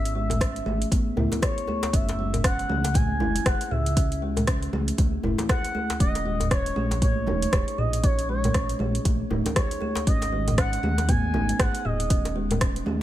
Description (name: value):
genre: afro house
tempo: 118 BPM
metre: 4/4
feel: swing 59% on 16ths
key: unclear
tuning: A4 = 440 Hz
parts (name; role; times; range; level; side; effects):
- expressive portamento lead; melody; 0.0-12.4 s; C#5 to G#5; -30 LUFS; equal; lush chorus, ping-pong delay
- kalimba; arpeggios; 0.0-12.9 s; G#3 to G#4; -32 LUFS; equal; sidechain pumping, ping-pong delay
- dark detuned saw bass; bass; 0.0-13.0 s; D#1 to D#2; -28 LUFS; equal; sidechain pumping
- afro-pop drum kit; drums; 0.1-12.8 s; hi-hat, rim click, toms; -29 LUFS; equal; studio reverb
- congas; percussion; 0.3-13.0 s; none; -31 LUFS; right 2 dB; none
- djembe; percussion; 0.3-12.6 s; none; -34 LUFS; left 2 dB; none
- electronic kick drum; drums; 0.4-12.7 s; none; -24 LUFS; equal; studio reverb
room: studio ambience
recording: none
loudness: -22 LUFS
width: side -13 dB against mid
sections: 0.0-13.0 A section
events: none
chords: 0.0 C#m; 1.9 F#7(no3); 6.0 D#5; 10.1 G#7(no3)